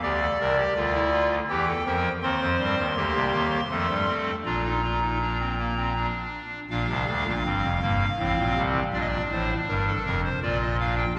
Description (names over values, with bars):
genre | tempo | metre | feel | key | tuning
classical, baroque-style 4-part fugue for pipe organ | 81 BPM | 3/4 | straight | Bb major | A4 = 441 Hz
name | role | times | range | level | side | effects
pipe organ, clarinet reed | solo | 0.0-11.2 s | F1 to C6 | -26 LUFS | equal | none
room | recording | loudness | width
wet church reverb, RT60 3.0 s | recorded in a church or concert hall | -26 LUFS | mono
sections
0.0-6.7 A section; 6.7-11.2 B section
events
none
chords
0.0 Bb (rootless); 1.5 Edim; 2.2 Cm7/Eb; 3.7 F; 4.5 Bb; 8.2 F/A; 8.9 Bb